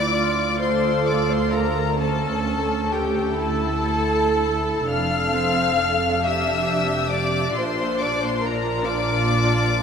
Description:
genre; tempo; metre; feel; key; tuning
classical, slow romantic movement for string orchestra; 38-47 BPM (dotted quarters); 6/8; rubato; D minor; A4 = 437 Hz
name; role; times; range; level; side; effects
warm chamber violin section; melody; 0.0-9.8 s; G5 to F6; -26 LUFS; left 6 dB; none
warm chamber violin section; second line; 0.0-9.8 s; G4 to F5; -24 LUFS; left 3 dB; none
clear chamber viola section; accompaniment; 0.0-9.8 s; C4 to A4; -25 LUFS; right 1 dB; none
dark chamber cello section; bass; 0.0-9.8 s; D2 to Bb2; -27 LUFS; right 4 dB; none
warm chamber double bass section; bass; 0.0-9.8 s; F1 to D2; -29 LUFS; right 3 dB; none
room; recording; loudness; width
wet cathedral reverb, RT60 5.6 s; in a vast, echoing space; -19 LUFS; side -7 dB against mid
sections
0.0-9.8 A section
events
none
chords
0.0 Dm; 2.0 A/D; 4.9 Dm/F; 7.6 Bb

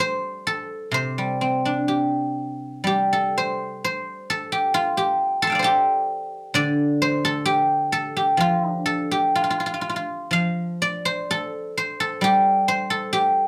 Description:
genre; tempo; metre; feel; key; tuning
chinese traditional, Chinese solo plucked strings; 61-67 BPM; 2/4; rubato; C zhi mode; A4 = 438 Hz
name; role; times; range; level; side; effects
guzheng; solo; 0.0-13.5 s; C3 to C6; -22 LUFS; equal; none
room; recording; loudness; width
wet small room reverb, RT60 0.5 s; band playing live in one room; -23 LUFS; mono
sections
0.0-2.9 A section; 2.9-13.5 B section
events
none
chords
none

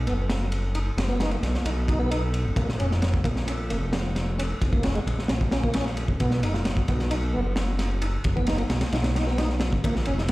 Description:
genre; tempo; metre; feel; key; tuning
breakbeat, breaks; 132 BPM; 4/4; straight; unclear; A4 = 439 Hz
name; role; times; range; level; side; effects
fat analog bass; bass; 0.0-10.3 s; F1 to B1; -26 LUFS; equal; none
tonewheel organ; riff; 0.1-10.2 s; Ab3 to F4; -32 LUFS; equal; overdrive, chorus vibrato, slow rotary speaker, tube saturation, vintage 12-bit sampler grit, tape echo
crunchy breakbeat drum kit; drums; 0.1-10.3 s; kick drum, ride cymbal, snare drum; -26 LUFS; equal; none
congas; percussion; 9.8-9.9 s; none; -36 LUFS; left 4 dB; none
room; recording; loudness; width
small room ambience; played on a big sound system in a bare room, large studio reverb; -23 LUFS; side -19 dB against mid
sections
0.0-10.3 A section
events
none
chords
0.0 B; 2.6 Bbm; 6.2 B

